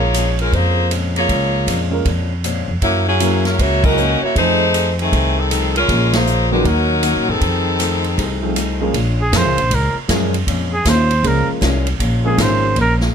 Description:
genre	jazz, big band swing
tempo	157 BPM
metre	4/4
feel	swing 64% on 8ths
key	Bb minor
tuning	A4 = 440 Hz
part	warm saxophone section	melody	0.0-8.6 s	Eb3 to Eb5	-17 LUFS	left 1 dB	none
part	picked steel-string acoustic guitar	accompaniment	0.0-13.0 s	Gb2 to G#4	-27 LUFS	left 7 dB	none
part	upright bass	bass	0.0-13.1 s	Ab1 to Bb2	-18 LUFS	equal	none
part	swinging big-band drum kit	drums	0.1-13.1 s	crash cymbal, hi-hat, kick drum, ride cymbal, snare drum	-22 LUFS	right 1 dB	none
part	clear concert grand piano	accompaniment	1.9-12.7 s	Eb3 to Bb4	-22 LUFS	right 1 dB	none
part	warm trumpet	melody	9.2-12.9 s	Ab4 to C5	-18 LUFS	right 3 dB	none
room	light reverb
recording	close, detailed microphones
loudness	-14 LUFS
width	side -7 dB against mid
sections	0.0-8.9 A section; 8.9-13.1 B section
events	band accent 3.8, 6.1; trumpet solo 8.9-13.1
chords	0.0 Bbm7; 2.8 Gb7; 4.4 F7#9; 5.9 Bbm7; 6.6 Ebm7; 7.4 F7#9; 8.9 Bbm7

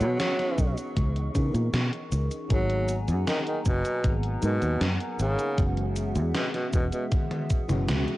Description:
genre	vaporwave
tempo	78 BPM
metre	4/4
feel	straight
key	C# dorian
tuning	A4 = 440 Hz
part	clear tenor saxophone	melody	0.0-7.0 s	B2 to F#3	-31 LUFS	equal	tape echo
part	FM electric piano with soft pad layer	accompaniment	0.0-8.2 s	E3 to A#4	-34 LUFS	left 1 dB	tremolo, lush chorus, tape echo
part	warbly tape-like pad	sustained chords	0.0-8.2 s	B3 to C#6	-39 LUFS	right 1 dB	chorus, built-in reverb
part	fingered electric bass	bass	0.0-8.0 s	E1 to C#3	-26 LUFS	equal	none
part	gated 80s digital drum machine	drums	0.0-8.2 s	cabasa, hi-hat, snare drum, toms	-31 LUFS	equal	gated reverb, gated reverb snare, small room ambience
part	electronic kick drum	drums	0.6-7.7 s	none	-25 LUFS	equal	small room ambience
room	little or no reverb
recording	dry, gritty hardware recording, transformer saturation, cassette tape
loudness	-24 LUFS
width	side -17 dB against mid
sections	0.0-8.2 A section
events	drum fill 7.1-8.2; band accent 7.9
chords	0.0 C#m9; 2.5 G#m9; 5.6 F#9sus4

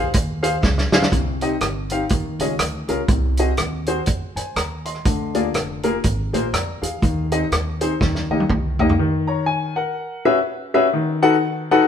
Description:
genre	uptempo gospel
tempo	122 BPM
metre	4/4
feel	swing 60% on 8ths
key	Ab major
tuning	A4 = 442 Hz
part	clear grand piano	accompaniment	0.0-11.8 s	C3 to C6	-20 LUFS	left 2 dB	none
part	upright bass	bass	0.0-8.9 s	F1 to Gb2	-25 LUFS	right 1 dB	none
part	warm soul drum kit	drums	0.1-9.0 s	hi-hat, kick drum, rim click, snare drum, toms	-21 LUFS	right 1 dB	none
room	moderate stone room reverb, RT60 1.2 s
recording	band playing live in one room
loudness	-18 LUFS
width	side -8 dB against mid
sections	0.0-1.1 A section; 1.1-9.0 B section; 9.0-11.9 A section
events	drum fill 0.6-1.1, 8.0-9.0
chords	0.0 Ab; 1.1 Cm; 2.1 Eb9sus4; 3.1 Ab7/C; 5.1 Bb7; 7.0 Ab/Eb; 8.0 Eb; 9.0 N.C.; 10.0 F#9sus4; 10.9 B7/D#

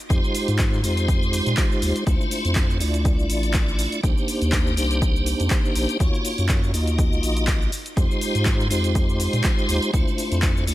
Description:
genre	deep house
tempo	122 BPM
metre	4/4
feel	swing 55% on 16ths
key	unclear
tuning	A4 = 439 Hz
part	punchy analog drum machine	drums	0.0-10.7 s	handclaps, hi-hat, shaker	-29 LUFS	equal	overdrive
part	tonewheel organ	stabs	0.1-10.7 s	Ab3 to Eb5	-24 LUFS	equal	overdrive, chorus vibrato, slow rotary speaker, sidechain pumping, digital delay
part	round analog bass	bass	0.1-10.7 s	A1 to Bb2	-24 LUFS	equal	sidechain pumping
part	electronic kick drum	drums	0.1-10.5 s	none	-22 LUFS	equal	overdrive
room	little or no reverb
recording	none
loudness	-19 LUFS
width	side -15 dB against mid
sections	0.0-10.7 A section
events	none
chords	0.0 Fm9; 2.1 Dm9; 4.0 Cm9; 6.0 Ebm9; 7.7 Fm9; 9.9 Dm9

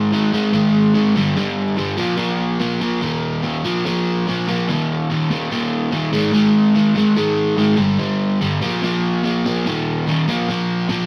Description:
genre	rock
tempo	145 BPM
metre	4/4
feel	straight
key	Eb major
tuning	A4 = 445 Hz
part	crunchy overdriven guitar	solo	0.0-11.1 s	Eb2 to Bb3	-18 LUFS	equal	none
room	wet studio reverb, RT60 0.7 s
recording	vinyl crackle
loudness	-18 LUFS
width	mono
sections	0.0-11.1 A section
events	none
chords	0.0 Ab5; 1.2 G5; 2.0 Bb5; 3.0 Eb5; 3.6 Bb5; 4.7 Eb5; 6.1 Ab5; 7.8 G5; 8.6 Bb5; 9.7 Eb5; 10.3 Bb5

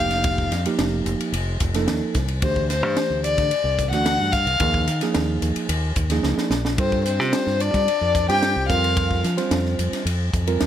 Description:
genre	electric jazz fusion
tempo	110 BPM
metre	4/4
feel	straight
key	unclear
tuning	A4 = 442 Hz
part	dark violin	melody	0.0-9.2 s	C5 to G5	-23 LUFS	left 3 dB	plate reverb, tape echo
part	mellow reed electric piano	accompaniment	0.0-10.7 s	E3 to C5	-26 LUFS	right 5 dB	plate reverb
part	fingered electric bass	bass	0.0-10.7 s	F1 to G3	-24 LUFS	equal	none
part	crisp fusion drum kit	drums	0.1-10.7 s	hi-hat, kick drum, ride cymbal, snare drum	-25 LUFS	equal	none
part	bright trombone	second line	6.8-9.2 s	C4 to G4	-28 LUFS	left 4 dB	plate reverb
room	moderate studio reverb, RT60 0.7 s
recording	none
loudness	-19 LUFS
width	side -10 dB against mid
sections	0.0-10.7 A section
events	drum fill 6.2-6.8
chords	0.0 F9sus4; 2.4 D9sus4; 4.6 Ebsus4; 6.8 G9sus4; 8.7 Fsus4

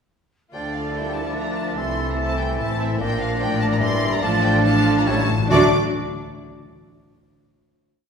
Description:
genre	quick classical-period movement for symphony orchestra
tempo	145 BPM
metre	3/4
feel	uneven beats, rubato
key	D minor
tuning	A4 = 439 Hz
part	rich studio violin section	melody	0.5-5.8 s	E5 to D6	-29 LUFS	left 2 dB	none
part	clear clarinet	second line	0.5-5.7 s	Bb3 to F#4	-27 LUFS	right 3 dB	none
part	clear oboe	second line	0.5-5.7 s	C#5 to E5	-31 LUFS	right 3 dB	none
part	mellow hollow silver concert flute	second line	0.5-5.8 s	D6 to Bb6	-28 LUFS	equal	none
part	rich studio violin section	second line	0.5-5.8 s	A4 to F5	-30 LUFS	left 2 dB	none
part	clear bassoon	accompaniment	0.5-5.7 s	E3 to A3	-30 LUFS	equal	none
part	rich studio viola section	accompaniment	0.5-5.8 s	E3 to F4	-27 LUFS	right 2 dB	none
part	mellow French horn section	sustained chords	0.5-5.7 s	E3 to E4	-29 LUFS	left 4 dB	none
part	rich studio cello section	bass	0.5-5.8 s	G2 to D3	-28 LUFS	equal	none
part	warm studio double bass section	bass	0.5-5.8 s	G1 to D2	-26 LUFS	left 1 dB	none
part	timpani	percussion	5.1-5.7 s	A2 to D3	-26 LUFS	left 3 dB	none
room	wet recital hall reverb, RT60 1.8 s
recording	heard from further back in the room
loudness	-18 LUFS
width	side -6 dB against mid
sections	0.5-5.5 A section; 5.5-6.8 final chord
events	slowing down 2.4-5.5; timpani fill 5.1-5.5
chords	0.5 Dm; 1.8 Am/C; 3.0 Bb; 3.8 Em7b5/G; 4.2 Dm/A; 5.1 A7; 5.5 D

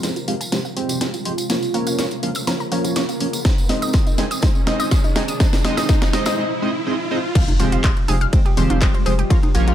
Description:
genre	progressive house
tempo	123 BPM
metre	4/4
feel	straight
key	F minor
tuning	A4 = 440 Hz
part	shimmering ambient pad	sustained chords	0.0-9.7 s	C3 to Bb4	-28 LUFS	right 1 dB	chorus, built-in reverb, sidechain pumping
part	analog pluck	arpeggios	0.0-9.7 s	Eb4 to E6	-28 LUFS	left 1 dB	chorus, sidechain pumping, digital delay
part	chorused polysynth	stabs	0.0-9.7 s	F3 to Ab5	-24 LUFS	right 1 dB	sidechain pumping, digital delay
part	house drum kit	drums	0.0-9.7 s	crash cymbal, handclaps, hi-hat, ride cymbal, snare drum	-25 LUFS	equal	none
part	tambourine	percussion	0.0-6.4 s	none	-30 LUFS	right 2 dB	none
part	riser and impact	sound effects	0.7-9.3 s	none	-29 LUFS	equal	none
part	saturated sub bass	bass	0.3-9.7 s	F1 to Db2	-22 LUFS	equal	sidechain pumping, high-pass filter
part	electronic kick drum	drums	3.5-9.4 s	none	-17 LUFS	equal	overdrive
part	electronic congas and toms	percussion	7.5-9.5 s	none	-27 LUFS	equal	overdrive, sidechain pumping on perc, sidechain pumping on toms
room	light reverb, digital ambience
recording	none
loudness	-16 LUFS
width	side -11 dB against mid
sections	0.0-7.4 A section; 7.4-9.7 B section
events	build-up 0.0-7.4; drum fill 0.0-6.4; filter sweep on synth arpeggio sound 0.0-7.4; filter sweep on analog polysynth 0.0-7.4; filter sweep on ambient pad 0.0-7.4; riser 0.7-7.4; break 6.4-7.4; drop 7.4-9.7; impact 7.4-9.3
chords	0.0 Fmadd9; 1.5 Bbm; 3.5 Ab; 5.4 Ebsus2; 7.4 Fmadd9

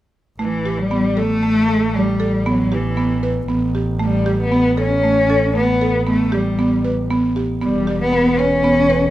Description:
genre	contemporary instrumental, chamber music in an uneven meter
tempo	116 BPM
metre	7/4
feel	straight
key	A mixolydian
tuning	A4 = 441 Hz
part	warm cello	melody	0.4-9.1 s	E3 to C#4	-18 LUFS	left 1 dB	none
part	buzzing marimba with medium mallets	arpeggios	0.4-9.1 s	A3 to B4	-20 LUFS	right 2 dB	none
part	rich double bass	bass	0.4-9.1 s	E1 to A1	-22 LUFS	right 1 dB	none
room	light reverb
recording	none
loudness	-15 LUFS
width	side -14 dB against mid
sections	0.4-9.1 A section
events	none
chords	0.4 Asus2; 7.6 Em

